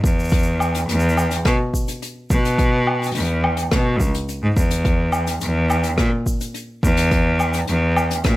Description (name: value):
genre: folktronica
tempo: 106 BPM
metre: 4/4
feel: straight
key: unclear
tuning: A4 = 440 Hz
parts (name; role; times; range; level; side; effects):
- bright cello; bass; 0.0-8.4 s; C#2 to B2; -19 LUFS; equal; none
- electronic kick drum; drums; 0.0-8.4 s; none; -20 LUFS; equal; overdrive
- jazz brush drum kit; drums; 0.1-8.4 s; hi-hat, rim click, shaker, woodblock; -25 LUFS; left 1 dB; none
room: little or no reverb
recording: none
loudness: -17 LUFS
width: side -17 dB against mid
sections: 0.0-8.4 A section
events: none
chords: none